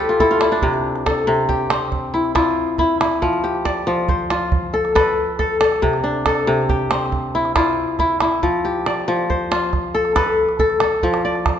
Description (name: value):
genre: west african traditional, West African string and xylophone music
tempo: 92 BPM (dotted quarters)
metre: 12/8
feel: straight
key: F lydian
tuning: A4 = 440 Hz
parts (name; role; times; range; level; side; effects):
- kora; arpeggios; 0.0-11.6 s; C3 to D5; -17 LUFS; left 2 dB; none
- calabash; percussion; 0.2-11.6 s; none; -23 LUFS; right 3 dB; none
room: wet recital hall reverb, RT60 1.5 s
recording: nothing above 7.8 kHz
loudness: -16 LUFS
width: side -9 dB against mid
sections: 0.0-11.0 A section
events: kora fill 0.0-0.6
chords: 0.0 F; 0.6 C; 3.2 F; 5.8 C; 8.4 F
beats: | 0.63 1.28 1.92 2.57 | 3.22 3.87 4.52 5.17 | 5.82 6.47 7.12 7.77 | 8.42 9.07 9.73 10.38 | 11.03